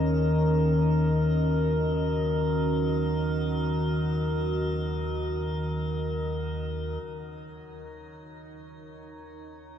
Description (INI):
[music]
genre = dark ambient drone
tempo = free time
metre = none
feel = none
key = unclear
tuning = A4 = 440 Hz
[part]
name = deep dark ambient pad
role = sustained chords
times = 0.0-9.8 s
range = Eb3 to Bb5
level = -31 LUFS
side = equal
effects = chorus, built-in reverb, shimmer reverb
[part]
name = deep rumbling drone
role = drone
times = 0.0-9.8 s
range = Eb2 to Eb3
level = -28 LUFS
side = equal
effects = built-in reverb
[part]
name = metallic inharmonic drone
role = texture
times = 0.0-9.8 s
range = Bb4 to Db5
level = -32 LUFS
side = left 3 dB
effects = chorus, built-in reverb, shimmer reverb
[sound]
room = wet cathedral reverb, RT60 6.4 s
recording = in a vast, echoing space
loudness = -24 LUFS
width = side -9 dB against mid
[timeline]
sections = 0.0-7.0 A section; 7.0-9.8 B section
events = none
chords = 0.0 Db5/Eb; 7.0 Ebm